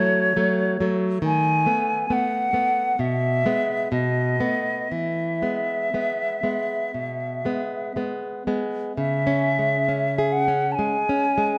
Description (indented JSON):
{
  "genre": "romantic duo for flute and classical guitar",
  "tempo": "58-70 BPM",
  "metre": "4/4",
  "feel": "rubato",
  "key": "E major",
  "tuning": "A4 = 443 Hz",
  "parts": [
    { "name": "bright silver concert flute", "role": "melody", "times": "0.0-11.6 s", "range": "C#5 to A5", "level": "-25 LUFS", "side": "equal", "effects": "none" },
    { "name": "nylon-string guitar", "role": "accompaniment", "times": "0.0-11.6 s", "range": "B2 to G#4", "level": "-27 LUFS", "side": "equal", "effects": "none" }
  ],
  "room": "moderate scoring stage reverb, RT60 1.6 s",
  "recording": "none",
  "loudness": "-23 LUFS",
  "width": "mono",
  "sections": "0.0-9.0 A section; 9.0-11.6 B section",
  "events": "none",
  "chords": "0.0 F#m; 1.2 B7/D#; 3.0 E/B; 3.9 B7; 4.9 E; 9.0 C#m",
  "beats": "0.38 | 1.24 2.11 3.00 3.92 | 4.92 5.94 6.95 7.96 | 8.96 9.88 10.77"
}